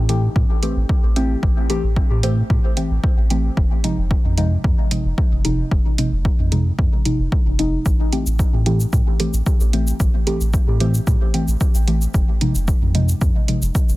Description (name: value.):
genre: dub techno.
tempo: 112 BPM.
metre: 4/4.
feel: straight.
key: A minor.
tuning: A4 = 441 Hz.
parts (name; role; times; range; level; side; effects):
warm sub bass; bass; 0.0-14.0 s; F1 to A2; -20 LUFS; equal; tube saturation, sidechain pumping.
deep mellow chord stab; stabs; 0.1-13.6 s; C3 to G4; -23 LUFS; equal; chorus, phaser, sidechain pumping, dub echo.
electronic hi-hat and cabasa; drums; 0.1-14.0 s; none; -28 LUFS; right 2 dB; none.
electronic kick drum; drums; 0.4-13.9 s; none; -18 LUFS; equal; overdrive.
room: little or no reverb.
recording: dense, heavily limited modern master.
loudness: -16 LUFS.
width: side -18 dB against mid.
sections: 0.0-14.0 A section.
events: filter sweep on synth stab 0.0-14.0.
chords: 0.0 Am7; 3.6 Fm7; 7.9 Am7; 12.1 Fm7.